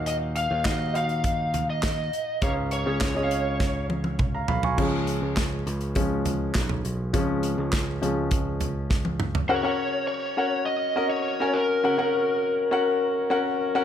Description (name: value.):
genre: piano-driven pop.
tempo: 102 BPM.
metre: 4/4.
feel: straight.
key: F# major.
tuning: A4 = 440 Hz.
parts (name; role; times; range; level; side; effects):
clear concert grand piano; accompaniment; 0.0-13.8 s; G#2 to C#6; -27 LUFS; left 2 dB; plate reverb.
picked electric bass; bass; 0.0-9.5 s; B1 to D#2; -29 LUFS; right 1 dB; none.
lead guitar through a small cranked amp; melody; 0.1-3.9, 9.5-13.8 s; A#4 to E#5; -27 LUFS; left 1 dB; overdrive, plate reverb.
modern studio drum kit; drums; 0.1-9.5 s; crash cymbal, handclaps, hi-hat, kick drum, snare drum, toms; -27 LUFS; right 1 dB; none.
room: light reverb.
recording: none.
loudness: -23 LUFS.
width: side -9 dB against mid.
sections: 0.0-4.8 A section; 4.8-9.5 B section; 9.5-13.8 C section.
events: drum fill 3.6-4.8, 8.9-9.5; grand piano solo 4.8-9.5.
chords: 0.0 D#madd9; 2.4 C#; 9.5 F#.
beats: | 0.07 0.66 1.25 1.84 | 2.43 3.02 3.60 4.19 | 4.78 5.37 5.96 6.55 | 7.14 7.73 8.32 8.90 | 9.49 10.08 10.67 11.26 | 11.85 12.44 13.02 13.61.